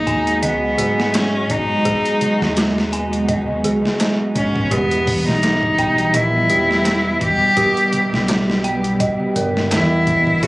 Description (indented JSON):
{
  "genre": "trip hop",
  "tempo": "84 BPM",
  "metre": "4/4",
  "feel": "swing 56% on 16ths",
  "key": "unclear",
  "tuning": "A4 = 439 Hz",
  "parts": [
    { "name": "clear cello", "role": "melody", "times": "0.0-10.5 s", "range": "B3 to G4", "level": "-19 LUFS", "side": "equal", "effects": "vintage 12-bit sampler grit, dub echo" },
    { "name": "string machine, cellos", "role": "sustained chords", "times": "0.0-10.5 s", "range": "E3 to F#4", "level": "-22 LUFS", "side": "equal", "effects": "ensemble chorus, vintage 12-bit sampler grit" },
    { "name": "dark detuned synth bell", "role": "arpeggios", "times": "0.0-10.5 s", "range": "F#4 to G#5", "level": "-23 LUFS", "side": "right 1 dB", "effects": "chorus, digital delay" },
    { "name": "deep dub fingered electric bass", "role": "bass", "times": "0.0-10.5 s", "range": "E1 to G#2", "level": "-24 LUFS", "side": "equal", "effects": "none" },
    { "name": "dusty soul sampler-style drum kit", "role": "drums", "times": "0.1-10.5 s", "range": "hi-hat, kick drum, snare drum", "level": "-22 LUFS", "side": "equal", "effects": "overdrive, studio reverb" },
    { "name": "darbuka", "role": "percussion", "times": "1.1-10.2 s", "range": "none", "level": "-30 LUFS", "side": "equal", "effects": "none" }
  ],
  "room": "little or no reverb",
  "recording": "recorded on a phone in the room, club reverb, vinyl crackle",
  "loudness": "-15 LUFS",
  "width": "side -20 dB against mid",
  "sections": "0.0-10.5 A section",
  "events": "none",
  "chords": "0.0 G#m7; 4.7 Em",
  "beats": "0.43 1.14 | 1.86 2.57 3.28 4.00 | 4.71 5.43 6.14 6.86 | 7.57 8.28 9.00 9.71 | 10.43"
}